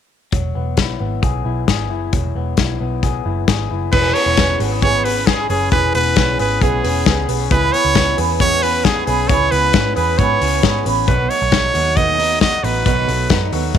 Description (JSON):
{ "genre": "jangly indie pop", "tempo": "134 BPM", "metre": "4/4", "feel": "straight", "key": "E major", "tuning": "A4 = 442 Hz", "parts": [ { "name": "electric guitar through a small old amp", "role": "arpeggios", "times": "0.3-13.8 s", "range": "E3 to G#4", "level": "-23 LUFS", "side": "left 13 dB", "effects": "none" }, { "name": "vintage muted picked electric bass", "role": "bass", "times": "0.3-13.8 s", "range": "E1 to G#2", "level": "-21 LUFS", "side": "right 2 dB", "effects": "none" }, { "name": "loose indie drum kit", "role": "drums", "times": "0.3-13.8 s", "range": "crash cymbal, hi-hat, kick drum, snare drum", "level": "-18 LUFS", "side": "left 3 dB", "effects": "none" }, { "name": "bright trumpet", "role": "melody", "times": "3.9-13.5 s", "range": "G#4 to D#5", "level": "-18 LUFS", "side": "right 2 dB", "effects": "none" }, { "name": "fingerpicked twelve-string acoustic guitar", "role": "accompaniment", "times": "3.9-13.8 s", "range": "B2 to B4", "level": "-22 LUFS", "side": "right 16 dB", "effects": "none" } ], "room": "little or no reverb", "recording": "1960s-style stereo with parts hard left and right", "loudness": "-14 LUFS", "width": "side -8 dB against mid", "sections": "0.3-3.9 A section; 3.9-13.8 B section", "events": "none", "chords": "0.3 Eadd9; 3.9 E6; 7.5 C#m7; 11.1 B7" }